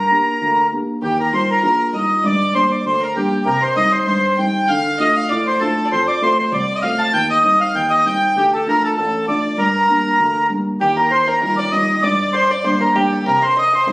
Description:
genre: celtic folk, Celtic reel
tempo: 196 BPM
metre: 4/4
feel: swing 53% on 8ths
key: G minor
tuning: A4 = 443 Hz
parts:
  - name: mellow accordion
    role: melody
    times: 0.0-13.9 s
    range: G4 to A5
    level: -15 LUFS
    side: equal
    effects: plate reverb
  - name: dark upright piano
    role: accompaniment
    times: 0.0-13.9 s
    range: A1 to G4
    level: -21 LUFS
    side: equal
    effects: none
  - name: clear fiddle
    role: second line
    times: 1.0-13.9 s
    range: G4 to A5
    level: -26 LUFS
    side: left 1 dB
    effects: none
  - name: bluegrass banjo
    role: second line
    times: 10.8-13.9 s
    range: G4 to Eb5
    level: -26 LUFS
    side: right 1 dB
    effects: none
room: moderate studio reverb, RT60 0.7 s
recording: recorded on a phone in the room, studio reverb, nothing above 10.3 kHz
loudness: -14 LUFS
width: side -23 dB against mid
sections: 0.0-1.0 A section; 1.0-10.8 B section; 10.8-13.9 B section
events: none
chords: 0.0 Gm; 1.0 Ebadd9; 2.2 Gm; 3.5 Cm; 4.7 Dm; 5.9 F; 7.1 Cm/Eb; 8.4 Dm; 9.6 Gm; 10.8 Ebadd9; 12.0 Gm; 13.3 Cm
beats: 0.10 0.41 0.71 | 1.02 1.33 1.63 1.94 | 2.24 2.55 2.86 3.16 | 3.47 3.77 4.08 4.38 | 4.69 5.00 5.30 5.61 | 5.91 6.22 6.52 6.83 | 7.13 7.44 7.75 8.05 | 8.36 8.66 8.97 9.28 | 9.59 9.89 10.20 10.51 | 10.81 11.12 11.43 11.73 | 12.04 12.35 12.65 12.96 | 13.27 13.58 13.88

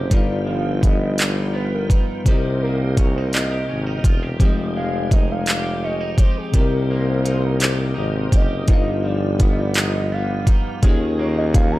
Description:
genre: slow six-eight R&B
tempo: 56 BPM (dotted quarters)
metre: 6/8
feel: straight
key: unclear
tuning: A4 = 441 Hz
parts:
  - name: warm velvety synth lead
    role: melody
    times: 0.0-11.8 s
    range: Ab4 to Bb5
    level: -28 LUFS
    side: equal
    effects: chorus, digital delay
  - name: electric guitar at the edge of break-up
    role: second line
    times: 0.0-11.8 s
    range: G2 to Ab4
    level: -30 LUFS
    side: right 3 dB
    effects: lush chorus
  - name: bell-like tine electric piano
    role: accompaniment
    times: 0.0-11.8 s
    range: C3 to F5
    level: -27 LUFS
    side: left 4 dB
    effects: none
  - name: tonewheel organ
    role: sustained chords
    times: 0.0-11.8 s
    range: C3 to G5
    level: -34 LUFS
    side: equal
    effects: overdrive, chorus vibrato, slow rotary speaker
  - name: warm tuba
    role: bass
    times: 0.0-11.8 s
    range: E1 to Eb2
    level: -22 LUFS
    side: equal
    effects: none
  - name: smooth R&B drum kit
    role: drums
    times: 0.1-11.7 s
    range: handclaps, hi-hat, kick drum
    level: -17 LUFS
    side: equal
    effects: overdrive
room: digital ambience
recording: none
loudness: -17 LUFS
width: side -17 dB against mid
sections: 0.0-11.8 A section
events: soft synth lead solo 0.0-11.8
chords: 0.1 G7b13; 2.3 Cm7; 4.4 Fm9; 6.5 Cm7; 8.7 G7b13; 10.8 Eb7sus4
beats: | 0.11 1.18 | 2.26 3.33 | 4.40 5.47 | 6.54 7.61 | 8.68 9.76 | 10.83

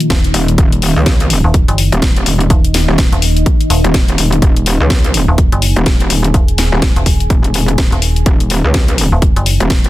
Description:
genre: bass house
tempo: 125 BPM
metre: 4/4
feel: swing 60% on 16ths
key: unclear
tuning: A4 = 442 Hz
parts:
  - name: deep dark ambient pad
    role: sustained chords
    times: 0.0-9.9 s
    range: Bb3 to Ab5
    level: -20 LUFS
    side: left 1 dB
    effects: chorus, built-in reverb, sidechain pumping
  - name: house drum kit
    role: drums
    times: 0.0-9.9 s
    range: hi-hat, snare drum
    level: -18 LUFS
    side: left 2 dB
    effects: none
  - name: metallic FM bass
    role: bass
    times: 0.1-9.6 s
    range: Eb1 to Gb1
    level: -13 LUFS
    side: equal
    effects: tube saturation, sidechain pumping
  - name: electronic kick drum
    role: drums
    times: 0.1-9.8 s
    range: none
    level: -12 LUFS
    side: equal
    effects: none
  - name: metallic wobble bass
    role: bass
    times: 0.3-9.9 s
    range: Eb1 to Db2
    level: -13 LUFS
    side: equal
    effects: chorus, overdrive, sidechain pumping
room: little or no reverb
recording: dense, heavily limited modern master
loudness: -9 LUFS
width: side -16 dB against mid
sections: 0.0-9.9 A section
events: none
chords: 0.0 Eb5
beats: 0.10 | 0.58 1.06 1.54 2.02 | 2.50 2.98 3.46 3.94 | 4.42 4.90 5.38 5.86 | 6.34 6.82 7.30 7.78 | 8.26 8.74 9.22 9.70

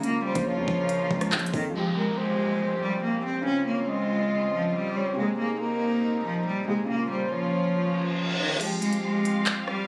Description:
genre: hip hop, drill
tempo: 140 BPM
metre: 4/4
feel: half-time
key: F minor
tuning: A4 = 440 Hz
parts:
  - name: warm cello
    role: melody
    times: 0.0-9.9 s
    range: Eb3 to Db4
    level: -30 LUFS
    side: equal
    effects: none
  - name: dark concert grand piano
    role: accompaniment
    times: 0.0-9.9 s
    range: C3 to Ab4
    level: -36 LUFS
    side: equal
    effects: none
  - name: warm studio string section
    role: sustained chords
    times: 0.0-9.9 s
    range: Bb2 to F5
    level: -36 LUFS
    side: equal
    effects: none
  - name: drill drum kit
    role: drums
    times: 0.0-1.6, 8.6-9.8 s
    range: crash cymbal, handclaps, hi-hat, kick drum, rim click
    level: -32 LUFS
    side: equal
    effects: none
  - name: breathy flute-like synth lead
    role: second line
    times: 0.2-8.1 s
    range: Ab4 to Eb5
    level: -33 LUFS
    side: equal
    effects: chorus, digital delay
  - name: long sustained 808-style bass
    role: bass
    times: 0.4-1.7 s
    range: Bb1 to F2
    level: -34 LUFS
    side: equal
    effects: none
  - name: downlifter and reverse cymbal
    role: sound effects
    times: 1.8-8.6 s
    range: none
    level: -36 LUFS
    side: equal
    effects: none
room: light reverb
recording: recorded on a phone in the room, studio reverb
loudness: -27 LUFS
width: mono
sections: 0.0-1.7 A section; 1.7-8.6 B section; 8.6-9.9 C section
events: reverse cymbal 7.9-8.6; kick muted 8.6-9.9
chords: 0.0 Bbm; 1.7 Fmadd9; 3.5 Dbmaj7; 5.2 Abadd9; 6.9 Bbm; 8.6 Fmadd9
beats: | 0.04 0.46 0.89 1.32 | 1.75 2.18 2.61 3.04 | 3.46 3.89 4.32 4.75 | 5.18 5.61 6.04 6.46 | 6.89 7.32 7.75 8.18 | 8.61 9.04 9.46

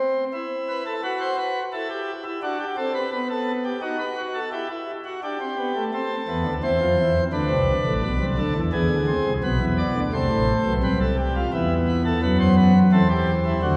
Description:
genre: classical, baroque-style 3-part fugue for pipe organ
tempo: 86 BPM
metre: 4/4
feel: straight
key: A minor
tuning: A4 = 443 Hz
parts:
  - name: pipe organ, principal chorus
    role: solo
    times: 0.0-13.8 s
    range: A1 to D5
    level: -23 LUFS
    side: equal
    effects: none
room: wet church reverb, RT60 2.8 s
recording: heard from further back in the room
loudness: -23 LUFS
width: mono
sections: 0.0-5.9 A section; 5.9-13.8 B section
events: none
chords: 0.3 E5; 1.7 F#m7b5/E; 3.1 B; 4.5 Em; 5.9 Am; 7.3 Cmaj13; 8.7 E; 10.1 Am; 11.5 E5; 12.9 F#m7b5/E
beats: | 0.34 1.03 1.73 2.42 | 3.12 3.82 4.52 5.22 | 5.93 6.63 7.34 8.04 | 8.73 9.43 10.13 10.83 | 11.53 12.22 12.92 13.62

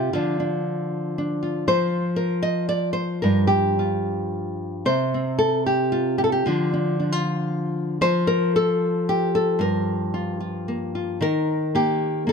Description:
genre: folk, solo fingerstyle acoustic guitar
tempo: 114 BPM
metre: 3/4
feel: rubato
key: unclear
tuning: A4 = 441 Hz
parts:
  - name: nylon-string guitar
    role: solo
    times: 0.0-12.3 s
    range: G2 to Eb5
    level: -20 LUFS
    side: equal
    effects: none
room: light reverb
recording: close, detailed microphones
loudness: -20 LUFS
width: side -6 dB against mid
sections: 0.0-11.2 A section; 11.2-12.3 B section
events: none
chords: 0.1 Dm; 1.7 N.C.; 3.3 Gm7; 4.9 N.C.; 6.5 Dm; 8.0 N.C.; 9.6 Gm7; 11.2 Eb5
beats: | 0.12 0.65 1.17 | 1.69 2.20 2.72 | 3.25 3.79 4.33 | 4.86 5.40 5.93 | 6.46 6.98 7.51 | 8.03 8.55 9.07 | 9.59 10.12 10.67 | 11.21 11.74 12.27

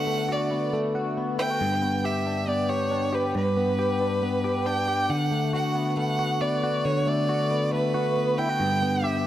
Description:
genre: indie pop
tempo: 137 BPM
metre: 4/4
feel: straight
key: D major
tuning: A4 = 440 Hz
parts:
  - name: clear violin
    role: melody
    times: 0.0-9.3 s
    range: B4 to G5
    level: -26 LUFS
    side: right 1 dB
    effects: tape echo
  - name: direct-recorded clean electric guitar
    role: arpeggios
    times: 0.0-9.3 s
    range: G2 to G4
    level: -25 LUFS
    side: left 1 dB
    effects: analog chorus, tape echo
room: light reverb, small room ambience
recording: echo-heavy mix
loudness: -23 LUFS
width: side -12 dB against mid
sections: 0.0-9.3 A section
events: none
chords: 0.0 D6; 1.6 G; 5.1 D6; 8.6 G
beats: 0.29 0.73 1.17 | 1.61 2.04 2.48 2.92 | 3.36 3.79 4.23 4.67 | 5.11 5.54 5.98 6.42 | 6.85 7.29 7.73 8.16 | 8.60 9.04

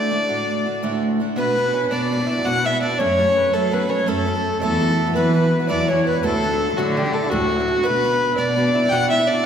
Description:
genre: celtic folk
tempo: 111 BPM (dotted quarters)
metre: 9/8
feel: straight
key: B minor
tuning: A4 = 437 Hz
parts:
  - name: dark fiddle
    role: melody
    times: 0.0-9.5 s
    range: F#4 to G5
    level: -20 LUFS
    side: left 1 dB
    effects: none
  - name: accordion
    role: second line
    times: 0.0-9.5 s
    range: F#4 to F#5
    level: -28 LUFS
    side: left 2 dB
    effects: none
  - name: picked steel-string acoustic guitar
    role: accompaniment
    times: 0.0-9.5 s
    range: D2 to B4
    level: -24 LUFS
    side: right 3 dB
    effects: none
  - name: Irish bouzouki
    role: second line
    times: 1.4-9.4 s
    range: F#3 to F#4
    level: -29 LUFS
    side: right 2 dB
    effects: none
  - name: dark cello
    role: bass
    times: 1.4-9.4 s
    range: D2 to F#3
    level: -24 LUFS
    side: equal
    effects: none
room: wet concert hall reverb, RT60 1.9 s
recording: recorded in a church or concert hall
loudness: -17 LUFS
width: side -8 dB against mid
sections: 0.0-1.4 A section; 1.4-9.5 B section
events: none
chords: 0.0 D; 1.4 Bm; 3.0 F#m; 4.6 Esus2; 6.2 D; 7.8 Bm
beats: 0.28 0.83 | 1.37 1.91 2.46 | 3.00 3.54 4.08 | 4.62 5.16 5.69 | 6.23 6.77 7.31 | 7.84 8.38 8.92 | 9.46

